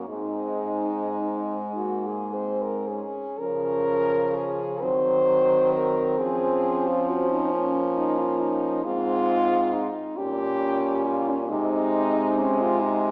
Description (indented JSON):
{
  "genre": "classical, lyrical piece for horn quartet",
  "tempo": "34-47 BPM (dotted quarters)",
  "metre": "6/8",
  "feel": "rubato",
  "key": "Db major",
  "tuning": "A4 = 440 Hz",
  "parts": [
    { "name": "warm French horn", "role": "second line", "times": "0.0-13.1 s", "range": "G3 to Db4", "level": "-30 LUFS", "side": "equal", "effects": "none" },
    { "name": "warm French horn", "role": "accompaniment", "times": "0.0-13.1 s", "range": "F3 to Db4", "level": "-28 LUFS", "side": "equal", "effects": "none" },
    { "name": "clear French horn", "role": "bass", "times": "0.0-13.1 s", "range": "Ab2 to F3", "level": "-29 LUFS", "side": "equal", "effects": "none" },
    { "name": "mellow French horn", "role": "melody", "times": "0.1-13.1 s", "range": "Db4 to C5", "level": "-25 LUFS", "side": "equal", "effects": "none" }
  ],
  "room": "wet scoring stage reverb, RT60 1.6 s",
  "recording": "heard from further back in the room, small speaker sound",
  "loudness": "-22 LUFS",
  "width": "side -31 dB against mid",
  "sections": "0.0-3.4 A section; 3.4-13.1 B section",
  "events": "none",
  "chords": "0.1 Ab; 3.4 Db; 4.8 Cdim/Eb; 6.2 Db/F; 8.8 Ab; 10.2 Gdim/Bb; 11.5 Ab/C"
}